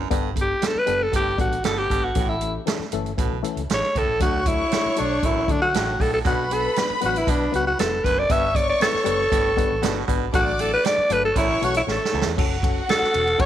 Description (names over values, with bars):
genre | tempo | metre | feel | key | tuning
uptempo 1960s-style soul | 117 BPM | 4/4 | straight | D major | A4 = 440 Hz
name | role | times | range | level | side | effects
reed electric piano | accompaniment | 0.0-13.5 s | E3 to C#5 | -29 LUFS | left 12 dB | fast tremolo
growling baritone saxophone | riff | 0.0-12.3 s | D2 to B2 | -32 LUFS | right 11 dB | none
vintage muted fingered electric bass | bass | 0.0-13.5 s | E1 to D3 | -30 LUFS | equal | none
swinging big-band drum kit | drums | 0.1-13.5 s | crash cymbal, hi-hat, kick drum, ride cymbal, snare drum | -25 LUFS | right 2 dB | none
growling alto saxophone | melody | 0.4-13.5 s | D4 to E5 | -22 LUFS | equal | none
warm symphonic violin section | second line | 4.2-13.5 s | F#4 to D6 | -28 LUFS | left 1 dB | none
room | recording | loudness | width
light reverb, small room ambience | 1960s-style stereo with parts hard left and right | -19 LUFS | side -11 dB against mid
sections
0.0-12.4 A section; 12.4-13.5 B section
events
alto saxophone solo 0.0-12.4; drum fill 11.9-12.4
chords
0.1 Gadd9; 2.2 A; 4.2 D; 6.3 Bm; 8.3 G; 10.3 D/A; 11.4 A; 12.4 F#m